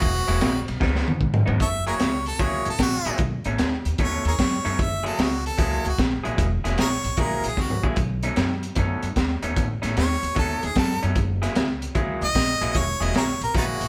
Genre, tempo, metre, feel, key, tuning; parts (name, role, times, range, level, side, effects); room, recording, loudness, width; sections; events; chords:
electric blues shuffle; 151 BPM; 4/4; swing 66% on 8ths; F# mixolydian; A4 = 441 Hz
bright harmonica; melody; 0.0-13.9 s; B3 to E5; -28 LUFS; equal
electric guitar through a small old amp; riff; 0.0-13.9 s; B2 to G#4; -32 LUFS; equal
upright bass; bass; 0.0-13.9 s; E1 to G#2; -30 LUFS; equal
crunchy breakbeat drum kit; drums; 0.0-13.9 s; hi-hat, kick drum, ride cymbal, snare drum, toms; -27 LUFS; equal
light reverb; band playing live in one room; -23 LUFS; mono
0.0-1.6 A section; 1.6-13.9 B section
harmonica solo 0.0-1.6; drum fill 0.8-1.6, 7.6-8.0
0.0 F#9; 0.8 C#9; 1.6 F#9; 3.2 B9; 4.8 F#9; 8.0 B9; 11.2 F#9